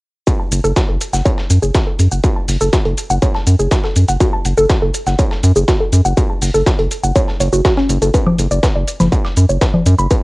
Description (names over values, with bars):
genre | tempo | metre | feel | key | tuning
melodic techno | 122 BPM | 4/4 | straight | F# minor | A4 = 440 Hz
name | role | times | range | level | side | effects
woody wave-folded pluck | arpeggios | 0.3-10.2 s | C#4 to D6 | -18 LUFS | equal | chorus, sidechain pumping, cassette tape, tape echo
dusty soul sampler-style drum kit | drums | 0.3-10.2 s | hi-hat, snare drum | -28 LUFS | equal | high-pass filter on hats, studio reverb, cassette tape, high-pass filter on snare
electronic kick drum | drums | 0.3-10.2 s | none | -15 LUFS | equal | distortion, overdrive, studio reverb, cassette tape
shaker and congas | drums | 0.3-10.2 s | none | -20 LUFS | left 1 dB | overdrive, studio reverb, cassette tape
round analog bass | bass | 0.5-10.1 s | F#1 to F#2 | -14 LUFS | equal | sidechain pumping
room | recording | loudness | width
little or no reverb | home recording on cassette | -12 LUFS | side -22 dB against mid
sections
0.3-10.2 A section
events
none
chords
0.3 F#m; 8.1 Bm/F#